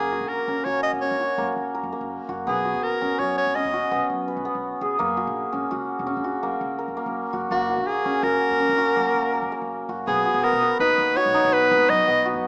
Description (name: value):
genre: contemporary instrumental, chamber music in an uneven meter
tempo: 166 BPM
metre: 7/4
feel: straight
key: F# major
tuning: A4 = 439 Hz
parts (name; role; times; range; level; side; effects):
- clear soprano saxophone; melody; 0.0-12.3 s; F#4 to D#5; -24 LUFS; equal; none
- hammered dulcimer; arpeggios; 0.0-12.5 s; A#3 to B4; -27 LUFS; equal; none
- upright bass; bass; 0.0-12.5 s; E1 to B2; -40 LUFS; equal; none
room: moderate scoring stage reverb, RT60 1.8 s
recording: small speaker sound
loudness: -23 LUFS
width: mono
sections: 0.0-10.1 A section; 10.1-12.5 B section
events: none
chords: 0.0 F#; 2.5 Badd9; 5.0 F#; 7.5 F#add9; 10.1 B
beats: 0.29 0.65 1.02 1.38 1.74 2.10 | 2.47 2.83 3.19 3.55 3.91 4.27 4.63 | 4.99 5.35 5.71 6.07 6.43 6.79 7.15 | 7.51 7.87 8.23 8.60 8.96 9.33 9.70 | 10.07 10.44 10.80 11.16 11.53 11.89 12.25